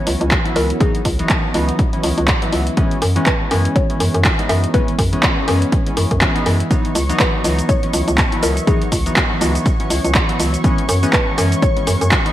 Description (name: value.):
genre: deep house.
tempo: 122 BPM.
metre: 4/4.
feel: swing 58% on 16ths.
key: C# minor.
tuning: A4 = 436 Hz.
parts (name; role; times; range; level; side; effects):
mallet-like synth pluck; melody; 0.0-12.3 s; G#4 to E5; -26 LUFS; left 2 dB; chorus, phaser, ping-pong delay.
soft string machine; sustained chords; 0.0-12.3 s; E3 to D#5; -29 LUFS; equal; phaser, ensemble chorus, sidechain pumping.
warm analog keys; stabs; 0.0-12.3 s; E3 to E4; -22 LUFS; equal; chorus, sidechain pumping, ping-pong delay.
hollow knocking FM bass; bass; 0.1-12.2 s; C#2 to F#2; -17 LUFS; equal; tube saturation, sidechain pumping.
punchy analog drum machine; drums; 0.1-12.3 s; cabasa, handclaps, hi-hat; -20 LUFS; equal; gated reverb.
electronic kick drum; drums; 0.3-12.2 s; none; -18 LUFS; equal; none.
analog string pad; texture; 6.7-12.3 s; C#6; -29 LUFS; right 1 dB; ensemble chorus.
room: light reverb, digital ambience.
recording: bright 1980s-style digital production, vinyl crackle.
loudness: -14 LUFS.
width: side -13 dB against mid.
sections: 0.0-12.3 A section.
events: none.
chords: 0.0 C#m11; 2.8 F#7sus4; 6.7 C#m11; 10.6 F#7sus4.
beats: 0.31 | 0.81 1.30 1.79 2.28 | 2.77 3.26 3.76 4.25 | 4.74 5.23 5.72 6.21 | 6.71 7.20 7.69 8.18 | 8.67 9.17 9.66 10.15 | 10.64 11.13 11.62 12.12.